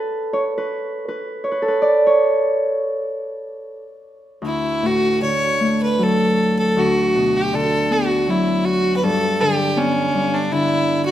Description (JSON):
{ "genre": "celtic folk, Celtic slow air", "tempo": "77 BPM", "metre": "3/4", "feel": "uneven beats, rubato", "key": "D major", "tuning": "A4 = 441 Hz", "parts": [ { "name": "Celtic harp", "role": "accompaniment", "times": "0.0-11.1 s", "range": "D2 to D5", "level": "-19 LUFS", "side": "equal", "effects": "none" }, { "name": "rich fiddle", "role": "melody", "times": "4.5-11.1 s", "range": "C#4 to C#5", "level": "-18 LUFS", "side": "equal", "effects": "none" } ], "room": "moderate concert hall reverb, RT60 2.0 s", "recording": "minimal, uncompressed stereo recording", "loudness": "-16 LUFS", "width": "side -12 dB against mid", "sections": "0.0-4.4 A section; 4.4-11.1 B section", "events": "harp solo 0.0-4.4", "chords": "0.0 N.C.; 4.4 D; 6.8 Bm/D; 9.0 G" }